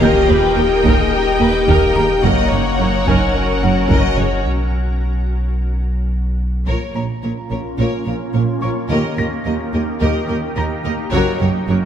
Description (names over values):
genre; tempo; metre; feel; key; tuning
cinematic, hybrid orchestral and electronic film score; 108 BPM; 4/4; straight; Bb phrygian; A4 = 440 Hz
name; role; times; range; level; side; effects
rich symphonic violin section; melody; 0.0-4.5 s; Gb5 to G5; -25 LUFS; left 4 dB; low-pass filter
rich symphonic violin section; second line; 0.0-11.8 s; Bb4 to Eb5; -25 LUFS; left 3 dB; none
rich symphonic viola section; accompaniment; 0.0-11.8 s; Gb3 to Eb5; -24 LUFS; right 1 dB; low-pass filter
mellow French horn section; sustained chords; 0.0-4.5 s; Bb3 to Bb4; -18 LUFS; left 3 dB; low-pass filter
shimmering ambient pad; sustained chords; 0.0-11.9 s; Gb3 to G5; -24 LUFS; equal; chorus, built-in reverb, low-pass filter
punchy sub bass; bass; 0.0-6.7 s; Eb1 to Cb2; -21 LUFS; equal; none
rich symphonic cello section; bass; 0.0-11.8 s; Eb2 to Bb2; -21 LUFS; right 3 dB; none
rich symphonic double bass section; bass; 0.0-11.8 s; Gb1 to Eb2; -22 LUFS; right 3 dB; none
taiko ensemble; drums; 0.0-7.8, 11.1-11.9 s; none; -22 LUFS; equal; none
bright grand piano; texture; 0.0-11.9 s; Ab4 to Bb6; -30 LUFS; equal; ping-pong delay
room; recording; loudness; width
moderate concert hall reverb, RT60 1.9 s; none; -15 LUFS; side -9 dB against mid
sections
0.0-6.7 A section; 6.7-11.9 B section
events
break 4.5-6.7; drum fill 5.8-6.7; filter sweep 6.7-11.9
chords
0.0 Eb; 2.2 Gb; 4.5 N.C.; 6.7 Bbm; 8.9 Eb; 11.1 Gb